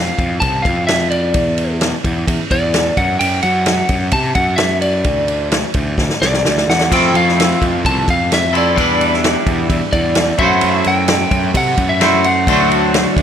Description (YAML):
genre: indie rock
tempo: 129 BPM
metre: 4/4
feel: straight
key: unclear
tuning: A4 = 440 Hz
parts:
  - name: lightly driven lead guitar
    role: melody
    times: 0.0-13.2 s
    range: D5 to A5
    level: -18 LUFS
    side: equal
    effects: tape echo
  - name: fuzz picked electric bass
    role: bass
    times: 0.0-13.2 s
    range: C2 to C3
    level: -19 LUFS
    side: equal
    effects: overdrive
  - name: vintage drum kit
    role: drums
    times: 0.2-13.2 s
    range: crash cymbal, kick drum, ride cymbal, snare drum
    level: -18 LUFS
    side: equal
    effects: none
  - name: twangy electric guitar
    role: riff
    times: 6.9-13.2 s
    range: D3 to C5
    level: -16 LUFS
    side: equal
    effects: double-tracked left and right
room: light reverb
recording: none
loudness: -12 LUFS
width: side -8 dB against mid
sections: 0.0-13.2 A section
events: drum fill 6.0-6.9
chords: 0.0 F5; 1.3 Dsus2/E; 3.0 N.C.; 6.9 Fmaj7; 8.8 Em7; 10.4 F#m7b5; 12.5 D7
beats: 0.41 0.87 | 1.34 1.80 2.27 2.74 | 3.20 3.67 4.13 4.59 | 5.06 5.52 5.99 6.45 | 6.92 7.38 7.84 8.31 | 8.77 9.23 9.70 10.16 | 10.62 11.08 11.54 12.01 | 12.47 12.93